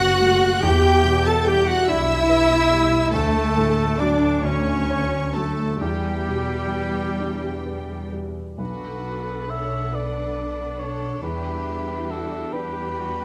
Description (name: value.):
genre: cinematic, emotional film score for orchestra.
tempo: 42-48 BPM (dotted quarters).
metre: 6/8.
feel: rubato.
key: unclear.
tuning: A4 = 440 Hz.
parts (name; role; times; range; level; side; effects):
clear studio violin section; melody; 0.0-13.2 s; F#5 to A6; -33 LUFS; equal; none.
mellow cor anglais; second line; 0.0-13.2 s; G3 to E5; -30 LUFS; equal; none.
rich studio violin section; second line; 0.0-13.2 s; F#4 to A5; -33 LUFS; equal; none.
silver concert flute; second line; 0.0-8.1 s; G4 to A5; -31 LUFS; equal; none.
dark studio viola section; accompaniment; 0.0-13.2 s; G3 to A4; -30 LUFS; equal; none.
felt-muted upright piano; accompaniment; 0.0-13.2 s; B1 to C#5; -32 LUFS; equal; none.
dark French horn section; sustained chords; 0.0-8.1 s; G3 to A4; -29 LUFS; equal; none.
rich studio cello section; bass; 0.0-13.2 s; G3 to A4; -31 LUFS; equal; none.
rich studio double bass section; bass; 0.0-13.2 s; F#1 to E2; -29 LUFS; equal; none.
room: moderate scoring stage reverb, RT60 1.5 s.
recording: none.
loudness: -22 LUFS.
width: mono.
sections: 0.0-8.6 A section; 8.6-13.2 B section.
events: none.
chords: 0.0 Bm7; 0.6 Em7; 3.1 Dmaj7; 5.8 Em7; 8.6 Bm7; 11.2 Em7.